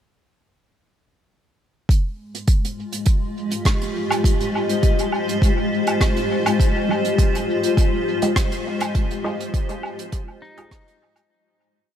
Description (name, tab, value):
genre	ambient dub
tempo	102 BPM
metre	4/4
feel	swing 54% on 16ths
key	F minor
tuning	A4 = 440 Hz
part	granular cloud pad	sustained chords	2.6-11.3 s	Ab3 to Eb5	-22 LUFS	left 2 dB	built-in reverb, lush chorus
part	electronic kick drum	drums	1.9-10.8 s	none	-18 LUFS	equal	none
part	soft brush drum kit	drums	1.9-11.3 s	hi-hat, rim click, woodblock	-27 LUFS	right 2 dB	dub echo
part	filtered dub chord stab	stabs	6.9-10.8 s	Ab3 to Eb5	-29 LUFS	right 4 dB	phaser, dub echo
part	pedal steel guitar	arpeggios	10.4-11.4 s	Eb4	-48 LUFS	left 3 dB	vintage 12-bit sampler grit
room	moderate huge ambient reverb, RT60 6.4 s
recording	dreamy mix soaked in reverb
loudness	-18 LUFS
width	side -10 dB against mid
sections	1.9-11.3 groove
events	fade-out 8.2-11.3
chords	1.9 Fm9